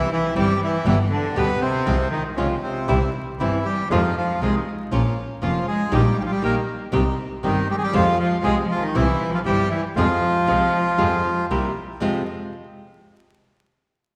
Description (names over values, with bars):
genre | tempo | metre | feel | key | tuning
tango | 119 BPM | 4/4 | rubato | F minor | A4 = 440 Hz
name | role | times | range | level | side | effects
bandoneon | melody | 0.0-11.5 s | C3 to B4 | -26 LUFS | equal | none
warm cello | second line | 0.0-11.5 s | B2 to Bb3 | -29 LUFS | equal | none
bandoneon | stabs | 0.0-12.2 s | G3 to Bb4 | -34 LUFS | equal | none
clear double bass | bass | 0.0-12.2 s | F1 to F2 | -27 LUFS | equal | none
nylon-string guitar | accompaniment | 0.4-12.2 s | F2 to G4 | -28 LUFS | equal | none
room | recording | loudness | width
wet scoring stage reverb, RT60 1.8 s | recorded in a church or concert hall, vinyl crackle | -21 LUFS | mono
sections
0.0-12.0 A section; 12.0-14.0 B section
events
none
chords
0.0 C; 0.9 G; 1.9 Fm/C; 2.9 C; 3.9 Fm7; 4.9 Bbm; 5.9 Eb/Bb; 6.9 Cm; 7.9 Fmadd9; 9.0 C; 10.0 Fm; 11.5 C7; 12.0 Fm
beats
0.35 0.85 1.36 | 1.87 2.37 2.88 3.39 | 3.90 4.42 4.92 5.42 | 5.93 6.43 6.93 7.44 | 7.94 8.45 8.95 9.46 | 9.96 10.47 10.98 11.50 | 12.01